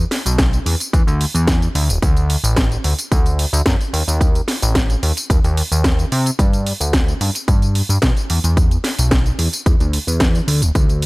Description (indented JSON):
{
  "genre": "nu-disco, nu disco",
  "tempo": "110 BPM",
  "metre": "4/4",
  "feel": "straight",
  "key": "unclear",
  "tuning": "A4 = 441 Hz",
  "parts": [
    { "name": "fat analog bass", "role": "bass", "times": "0.0-11.1 s", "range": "D1 to C3", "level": "-17 LUFS", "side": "equal", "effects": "none" },
    { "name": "house drum kit", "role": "drums", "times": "0.1-11.1 s", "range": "hi-hat, snare drum, tambourine", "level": "-21 LUFS", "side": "equal", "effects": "overdrive" },
    { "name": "electronic kick drum", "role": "drums", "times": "0.4-10.9 s", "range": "none", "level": "-16 LUFS", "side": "equal", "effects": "overdrive" }
  ],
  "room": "little or no reverb",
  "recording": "none",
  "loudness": "-14 LUFS",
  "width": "side -24 dB against mid",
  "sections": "0.0-11.1 A section",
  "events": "none",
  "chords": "none"
}